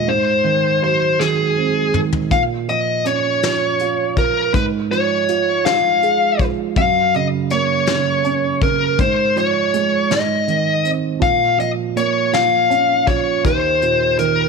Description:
six-eight pop ballad; 54 BPM (dotted quarters); 6/8; straight; Db major; A4 = 444 Hz
smooth overdriven lead guitar; melody; 0.0-14.5 s; Ab4 to F5; -16 LUFS; left 2 dB
dark upright piano; accompaniment; 0.0-14.5 s; Eb2 to Ab4; -20 LUFS; right 9 dB
soft brush drum kit; drums; 1.2-14.4 s; hi-hat, kick drum, snare drum, toms; -21 LUFS; left 3 dB
light reverb, small room reverb; 1960s-style stereo; -15 LUFS; side -4 dB against mid
0.0-14.5 A section
drum fill 1.2-2.3
0.1 Ab7; 2.3 Bbm; 4.5 Db/Ab; 6.8 Gb; 9.0 Db/Ab; 10.1 Ab; 11.2 Bbm; 13.4 Eb5

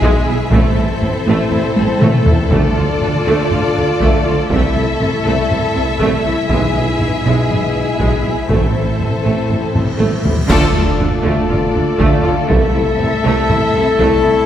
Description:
cinematic, epic orchestral film score; 120 BPM; 4/4; straight; A harmonic minor; A4 = 440 Hz
warm symphonic violin section; melody; 0.0-14.5 s; C5 to E5; -24 LUFS; left 4 dB
rich symphonic violin section; second line; 0.0-14.5 s; G#4 to A4; -24 LUFS; left 3 dB
warm symphonic viola section; accompaniment; 0.0-14.3 s; G#3 to F4; -22 LUFS; right 1 dB
clear symphonic string section; sustained chords; 0.0-14.5 s; A3 to E5; -24 LUFS; left 1 dB
mellow French horn section; sustained chords; 0.0-14.5 s; G#3 to F4; -22 LUFS; left 2 dB
rich symphonic cello section; bass; 0.0-14.3 s; A2 to D3; -23 LUFS; right 2 dB
rich symphonic double bass section; bass; 0.0-14.3 s; A1 to D2; -22 LUFS; right 2 dB
warm tuba; bass; 0.0-14.3 s; A1 to D2; -22 LUFS; right 2 dB
taiko ensemble; drums; 0.0-14.5 s; -18 LUFS; equal
timpani; percussion; 8.5-9.2 s; A2; -23 LUFS; right 1 dB
cymbal swell and impact; sound effects; 9.7-12.5 s; -30 LUFS; equal
mellow trumpet section; stabs; 10.5-14.5 s; A4; -19 LUFS; left 3 dB
clash cymbals and concert bass drum; percussion; 10.5-11.5 s; -23 LUFS; equal
wet concert hall reverb, RT60 1.7 s; heard from further back in the room; -12 LUFS; side -10 dB against mid
0.0-10.5 A section; 10.5-14.5 B section
drum fill 1.8-2.5, 9.8-10.5; cymbal swell 9.7-10.5; band accent 10.5-11.0; impact 10.5-12.5
0.0 E/B; 0.5 Am; 2.5 Dm; 4.5 Am/C; 6.5 E/B; 8.5 Am; 10.5 Dm; 12.5 Am/C

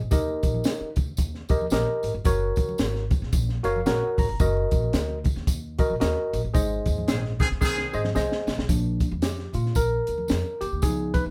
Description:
uptempo 1960s-style soul; 112 BPM; 4/4; swing 59% on 8ths; A4 = 440 Hz
upright bass; bass; 0.0-11.3 s; Gb1 to Bb2; -31 LUFS; equal
tine electric piano; accompaniment; 0.1-11.3 s; Ab2 to Bb5; -29 LUFS; equal; overdrive
compact cocktail drum kit; drums; 0.1-11.2 s; hi-hat, kick drum, snare drum; -27 LUFS; equal
congas; percussion; 0.1-11.3 s; -40 LUFS; equal
tambourine; percussion; 0.1-11.2 s; -44 LUFS; equal
warm horn section; second line; 7.1-8.0 s; Eb3 to Ab4; -30 LUFS; equal
light reverb; band playing live in one room; -25 LUFS; mono
0.0-8.7 A section; 8.7-11.3 B section
tine electric piano fill 3.3-4.4; band accent 6.5-8.7; drum fill 7.6-8.7; tine electric piano solo 8.7-11.3
0.1 Eb; 2.3 Gb; 4.4 Ebm/Gb; 6.5 Ab; 8.7 Bb

